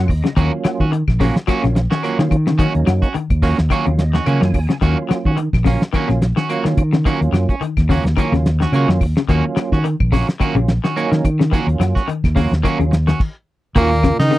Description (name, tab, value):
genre	afrobeat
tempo	107 BPM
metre	4/4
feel	swing 56% on 16ths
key	Eb minor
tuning	A4 = 439 Hz
part	percussive tonewheel organ	accompaniment	0.0-13.0 s	Gb3 to Ab5	-24 LUFS	right 5 dB	slow rotary speaker, chorus vibrato
part	clean electric guitar	arpeggios	0.0-14.4 s	Db3 to Gb3	-24 LUFS	left 7 dB	ensemble chorus
part	fingered electric bass	bass	0.0-14.3 s	Bb1 to Eb3	-17 LUFS	equal	none
part	electric guitar at the edge of break-up	stabs	0.1-14.3 s	Bb3 to Gb4	-23 LUFS	right 5 dB	none
part	cloth-damped thuddy drum kit	drums	0.1-14.4 s	crash cymbal, hi-hat, kick drum, snare drum	-18 LUFS	equal	none
part	claves	percussion	0.1-14.2 s	none	-34 LUFS	left 13 dB	none
part	edgy tenor saxophone	melody	13.8-14.4 s	Bb3 to Eb4	-17 LUFS	equal	none
part	breathy trombone	second line	13.8-14.4 s	Bb2 to Eb3	-23 LUFS	right 3 dB	none
part	bright baritone saxophone	second line	13.8-14.4 s	Bb2 to Eb3	-25 LUFS	right 7 dB	none
room	little or no reverb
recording	dry, close 1970s-style studio recording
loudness	-14 LUFS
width	side -16 dB against mid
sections	0.0-13.8 A section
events	tonewheel organ fill 0.0-0.4, 3.7-4.8; stop 13.2-13.8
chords	0.0 Ebm7